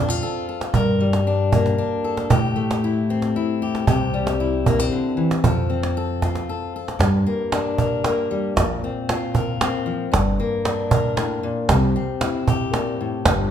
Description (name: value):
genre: acoustic folk duo or small band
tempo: 115 BPM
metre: 3/4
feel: straight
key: G dorian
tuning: A4 = 440 Hz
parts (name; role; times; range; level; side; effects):
- fingerpicked steel-string acoustic guitar; accompaniment; 0.0-13.5 s; G2 to Bb4; -22 LUFS; left 3 dB; none
- upright bass; bass; 0.0-13.5 s; G1 to A2; -23 LUFS; equal; none
- cajon; percussion; 0.1-13.4 s; none; -22 LUFS; right 3 dB; none
room: wet large studio reverb, RT60 1.1 s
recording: minimal, uncompressed stereo recording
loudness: -19 LUFS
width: side -9 dB against mid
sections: 0.0-7.0 A section; 7.0-13.5 B section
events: none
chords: 0.0 F; 0.7 Gm; 2.3 Am7; 3.9 C; 5.4 F; 7.0 Gm; 8.6 Bbsus2; 10.1 Gm; 11.7 C